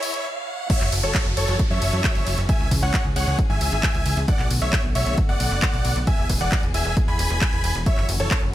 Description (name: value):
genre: uplifting trance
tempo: 134 BPM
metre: 4/4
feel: straight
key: F# minor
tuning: A4 = 440 Hz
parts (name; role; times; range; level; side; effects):
- big supersaw lead; melody; 0.0-8.4 s; E4 to B5; -27 LUFS; equal; sidechain pumping, dub echo
- dark grand piano; second line; 0.0-8.4 s; C#5 to B5; -34 LUFS; equal; sidechain pumping, dub echo
- warm studio string section; sustained chords; 0.0-8.5 s; D3 to B4; -33 LUFS; left 2 dB; sidechain pumping
- house drum kit; drums; 0.0-8.4 s; crash cymbal, handclaps, hi-hat, ride cymbal; -28 LUFS; equal; high-pass filter on hats, studio ambience, high-pass filter on cymbals, high-pass filter on snare
- riser and downlifter; sound effects; 0.0-4.3 s; none; -32 LUFS; right 1 dB; none
- electronic kick drum; drums; 0.7-8.4 s; none; -22 LUFS; equal; studio ambience
- plucky analog bass; bass; 0.8-8.5 s; E1 to F#2; -24 LUFS; equal; sidechain pumping
room: little or no reverb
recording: high-pass filter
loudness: -19 LUFS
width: side -13 dB against mid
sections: 0.7-8.5 A section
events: riser 0.0-0.7; stop 0.3-0.7; drop 0.7-8.5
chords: 0.0 E; 0.7 F#m7; 2.5 C#m; 4.3 Bm7; 6.1 E; 7.9 F#m7